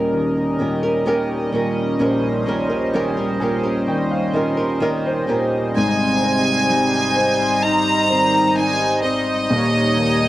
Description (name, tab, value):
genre	pop ballad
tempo	64 BPM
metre	4/4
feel	straight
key	Ab major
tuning	A4 = 440 Hz
part	warm baby grand piano	accompaniment	0.0-10.3 s	Eb1 to Ab5	-22 LUFS	equal	none
part	chorused pulse-width pad	sustained chords	0.0-10.3 s	G3 to Eb5	-22 LUFS	equal	none
part	flamenco guitar	arpeggios	0.0-5.8 s	Eb3 to Bb4	-22 LUFS	right 1 dB	tape echo
part	mellow French horn section	second line	5.7-10.3 s	C3 to G4	-24 LUFS	right 1 dB	none
part	bright chamber violin section	melody	5.8-10.3 s	Eb5 to Bb5	-18 LUFS	equal	cassette tape
room	moderate spring reverb, RT60 1.7 s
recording	home recording on cassette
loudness	-16 LUFS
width	side -15 dB against mid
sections	0.0-5.8 A section; 5.8-10.3 B section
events	grand piano fill 2.9-5.8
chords	0.0 Eb7; 5.8 Abmaj7; 9.5 Eb7